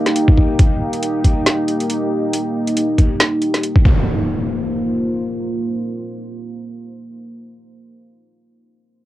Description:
deep dubstep; 138 BPM; 4/4; swing 56% on 16ths, half-time; A4 = 440 Hz
deep dark ambient pad; sustained chords; 0.0-6.9 s; Bb3 to C5; -20 LUFS; equal; chorus, built-in reverb, cassette tape
garage drum kit; drums; 0.1-3.7 s; hi-hat, snare drum; -18 LUFS; equal; overdrive, small room ambience
electronic kick drum; drums; 0.3-4.0 s; -12 LUFS; equal; overdrive, small room ambience
impact; sound effects; 3.9-6.9 s; -22 LUFS; equal
moderate booth ambience, RT60 0.3 s; home recording on cassette; -15 LUFS; side -14 dB against mid
0.0-4.1 A section; 4.1-7.5 B section
0.0 Bb5

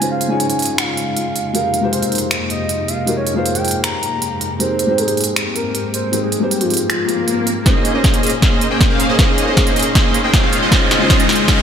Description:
future bass; 157 BPM; 4/4; half-time; A4 = 440 Hz
soft octave-layered synth lead; melody; 0.0-7.6 s; F4 to Bb5; -22 LUFS; equal; chorus, phaser, sidechain pumping, tape echo
felt-muted upright piano; accompaniment; 0.0-11.6 s; Ab3 to Db5; -21 LUFS; left 2 dB; wide subtle chorus, sidechain pumping, tape echo
airy breathy pad; sustained chords; 0.0-11.6 s; F2 to C6; -25 LUFS; equal; chorus, sidechain pumping
big-room dance drum kit; drums; 0.0-11.6 s; finger snaps, hi-hat, snare drum; -20 LUFS; right 1 dB; overdrive, high-pass filter on hats, high-pass filter on snare, high-pass filter on room
swell and riser; sound effects; 7.0-11.6 s; -25 LUFS; left 1 dB
big bright polysynth; riff; 7.7-11.6 s; Ab3 to G5; -17 LUFS; equal; wide subtle chorus, sidechain pumping, tape echo
electronic kick drum; drums; 7.7-11.6 s; -15 LUFS; equal; overdrive
wet cathedral reverb, RT60 4.4 s; dreamy mix soaked in reverb; -14 LUFS; side -8 dB against mid
0.0-7.7 A section; 7.7-11.6 B section
swell 7.0-7.7; build-up 7.7-11.6; drum fill 7.7-11.6
0.0 Dbmaj9; 1.4 Fm11; 4.6 Abmaj9; 7.7 Bbm11; 10.5 Dbmaj9

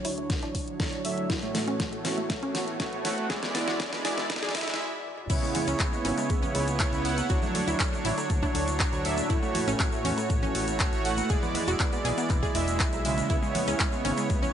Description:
progressive house; 120 BPM; 4/4; straight; A major; A4 = 440 Hz
warm analog pad; sustained chords; 0.0-14.5 s; D2 to D5; -38 LUFS; equal; chorus, sidechain pumping
wide unison pluck; arpeggios; 0.0-14.5 s; G#3 to G#4; -34 LUFS; equal; vintage 12-bit sampler grit, sidechain pumping, digital delay
soft supersaw; stabs; 0.0-14.5 s; A2 to F#5; -30 LUFS; right 2 dB; sidechain pumping, low-pass filter, digital delay
pop drum kit; drums; 0.0-14.4 s; crash cymbal, handclaps, hi-hat, snare drum, toms; -32 LUFS; equal; overdrive
riser; sound effects; 0.6-4.8 s; -41 LUFS; left 1 dB
electronic kick drum; drums; 0.3-14.4 s; -29 LUFS; equal
fat analog bass; bass; 5.3-14.5 s; E1 to E2; -32 LUFS; equal; tube saturation, sidechain pumping
egg shaker; percussion; 5.3-14.5 s; -41 LUFS; left 2 dB
congas and woodblock; percussion; 5.6-14.5 s; -40 LUFS; right 2 dB
light reverb; high-pass filter, nothing above 10.6 kHz; -25 LUFS; side -9 dB against mid
0.0-5.3 A section; 5.3-14.5 B section
build-up 0.0-5.3; drum fill 0.0-4.8, 5.0; filter sweep on synth pluck 0.0-5.3; filter sweep on supersaw synth 0.0-5.3; filter sweep 0.0-5.3; break 4.8-5.3; drop 5.3-14.5
0.0 Dmaj7; 1.3 A6; 3.3 E7; 5.3 C#m7; 7.3 Dmaj7; 9.3 A6; 11.3 E7; 13.3 C#m7

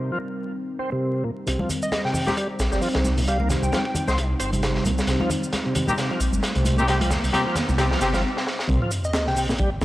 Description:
breakbeat, breaks; 133 BPM; 4/4; swing 57% on 16ths; C minor pentatonic; A4 = 439 Hz
dark analog pad; sustained chords; 0.0-8.2 s; G3 to C5; -30 LUFS; equal; chorus, phaser, vintage 12-bit sampler grit, sidechain pumping
bright tonewheel organ; riff; 0.0-9.7 s; Bb2 to C4; -28 LUFS; equal; overdrive, chorus vibrato, slow rotary speaker, tube saturation, vintage 12-bit sampler grit, low-pass filter, tape echo
dark detuned saw bass; bass; 1.5-9.8 s; G1 to C2; -24 LUFS; equal
crunchy breakbeat drum kit; drums; 1.5-9.8 s; hi-hat, kick drum, snare drum; -27 LUFS; equal; high-pass filter on kick, high-pass filter on hats, high-pass filter on snare, high-pass filter on room
electronic shaker and handclaps; drums; 1.5-9.8 s; -36 LUFS; right 1 dB; high-pass filter on perc, low-pass filter on perc, high-pass filter on snare, low-pass filter on snare
riser and sub drop; sound effects; 4.3-9.8 s; -32 LUFS; equal
congas; percussion; 1.6-8.2 s; -30 LUFS; left 1 dB
plucky unison lead; melody; 1.8-4.3, 9.0-9.5 s; Eb5 to G5; -29 LUFS; equal; small speaker sound, tape echo
warm horn section; stabs; 2.3-8.1 s; C4 to C5; -27 LUFS; left 2 dB; low-pass filter, tape echo
light reverb, studio ambience; dry, gritty hardware recording, vinyl crackle; -21 LUFS; side -16 dB against mid
0.0-1.5 A section; 1.5-8.7 B section; 8.7-9.8 C section
build-up 1.5-8.7; filter sweep on tonewheel organ 1.5-8.7; filter sweep on horn section 1.5-8.7; drum fill 5.1-8.2, 8.4-8.7; stop 8.2-8.7; drop 8.7-9.8; impact 8.7-9.8
0.0 Cm

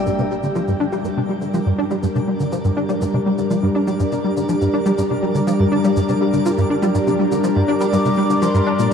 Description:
ambient, sequencer-driven space music; 122 BPM; 4/4; straight; G minor; A4 = 441 Hz
lush unison pad; sustained chords; 0.0-8.9 s; G3 to Bb4; -20 LUFS; equal; chorus, shimmer reverb
twinkling granular texture; texture; 0.0-8.9 s; D5; -35 LUFS; equal; built-in reverb, shimmer reverb
plucky analog bass; riff; 0.1-8.9 s; G2 to D4; -19 LUFS; equal; ensemble chorus, shimmer reverb, ping-pong delay
electronic shaker and toms; percussion; 0.1-8.9 s; -34 LUFS; left 4 dB; overdrive, ping-pong delay
wooden flute; melody; 7.9-8.9 s; C6 to D6; -23 LUFS; left 1 dB; shimmer reverb, ping-pong delay
wet cathedral reverb, RT60 5.7 s; in a vast, echoing space; -16 LUFS; side -7 dB against mid
0.1-8.9 A section
fade-in on synth texture 0.1-8.9; fade-in on drum 0.1-8.9
0.1 Gm7

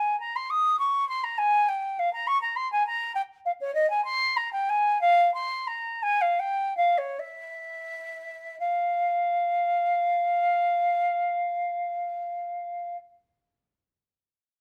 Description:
classical, baroque-style fantasia for unaccompanied flute; 39-69 BPM (dotted quarters); 6/8; rubato; F minor; A4 = 440 Hz
silver concert flute; solo; 0.0-13.0 s; Db5 to Eb6; -26 LUFS; equal
light reverb; -26 LUFS; mono
0.0-8.6 A section; 8.6-14.2 B section
slowing down 3.1-8.6

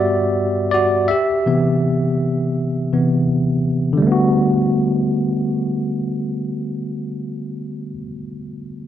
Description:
R&B; 82 BPM; 4/4; swing 58% on 16ths; G major; A4 = 440 Hz
bell-like tine electric piano; accompaniment; 0.0-8.9 s; G2 to E5; -17 LUFS; equal; fast stereo tremolo, low-pass filter
moderate plate reverb, RT60 3.0 s; worn, warbling old tape, cassette tape, warbly pitch drift; -16 LUFS; side -10 dB against mid
0.0-4.0 A section; 4.0-6.9 B section
tine electric piano solo 0.0-4.0; filter sweep on tine electric piano 0.0-4.0
0.0 Gmaj7; 1.1 Cmaj7; 4.0 Gmaj9

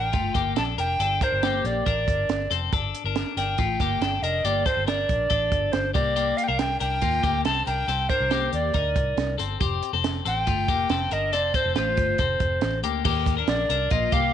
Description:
jangly indie pop; 139 BPM; 4/4; straight; G minor; A4 = 440 Hz
mellow hollow tenor recorder; melody; 0.0-14.3 s; C5 to A5; -25 LUFS; right 1 dB; slapback echo
twelve-string electric guitar; arpeggios; 0.0-14.3 s; A3 to Bb4; -27 LUFS; left 13 dB; slapback echo
vintage muted fingered electric bass; bass; 0.0-14.3 s; F1 to Eb2; -29 LUFS; equal
compact cocktail drum kit; drums; 0.1-14.2 s; crash cymbal, hi-hat, kick drum, snare drum; -28 LUFS; right 4 dB
light reverb, studio ambience; 1960s-style stereo, nothing above 10.3 kHz; -22 LUFS; side -9 dB against mid
0.0-13.1 A section; 13.1-14.3 B section
0.0 Gmadd9; 6.0 Cm7; 9.6 Fadd9; 13.1 Eb

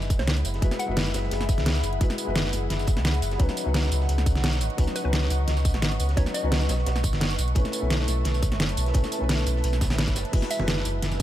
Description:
liquid drum and bass; 173 BPM; 4/4; straight; F# minor; A4 = 440 Hz
felt-muted upright piano; accompaniment; 0.0-11.2 s; F#3 to B4; -32 LUFS; left 3 dB; ping-pong delay
ethereal airy pad; sustained chords; 0.0-11.2 s; G#4 to E6; -33 LUFS; equal; ensemble chorus, built-in reverb, sidechain pumping
sub bass with octave; bass; 0.0-11.2 s; F#1 to C#2; -26 LUFS; equal
pop drum kit; drums; 0.0-11.2 s; crash cymbal, hi-hat, snare drum, tambourine; -28 LUFS; equal; overdrive
crunchy breakbeat drum kit; drums; 0.1-11.2 s; hi-hat, snare drum; -40 LUFS; equal
electronic kick drum; drums; 0.1-11.2 s; -24 LUFS; equal
hollow square pluck; melody; 0.2-1.1, 5.0-6.7, 10.5-10.6 s; B4 to F#5; -36 LUFS; equal; chorus, ping-pong delay
congas and bongos; percussion; 10.6-11.2 s; -33 LUFS; right 2 dB
small room ambience; -22 LUFS; side -13 dB against mid
0.0-11.2 A section
0.0 F#9sus4; 3.4 C#9sus4; 6.7 B9sus4; 10.3 F#9sus4

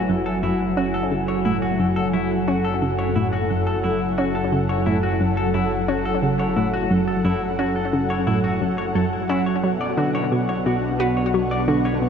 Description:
ambient, sequencer-driven space music; 88 BPM; 4/4; straight; F# minor; A4 = 440 Hz
lush unison pad; sustained chords; 0.0-12.1 s; B2 to C#6; -22 LUFS; equal; chorus, shimmer reverb
semi-hollow electric guitar; arpeggios; 0.0-12.0 s; E4 to D5; -29 LUFS; left 3 dB; auto-pan, ping-pong delay, shimmer reverb
analog drone; bass; 0.1-12.1 s; F#1 to B1; -29 LUFS; equal; chorus
analog pluck; riff; 0.1-12.1 s; F#2 to F#4; -23 LUFS; equal; chorus, ping-pong delay
wet huge ambient reverb, RT60 8.1 s; dark, warm production; -19 LUFS; side -7 dB against mid
0.0-12.1 A section
0.0 F#m7; 9.6 Bmadd9

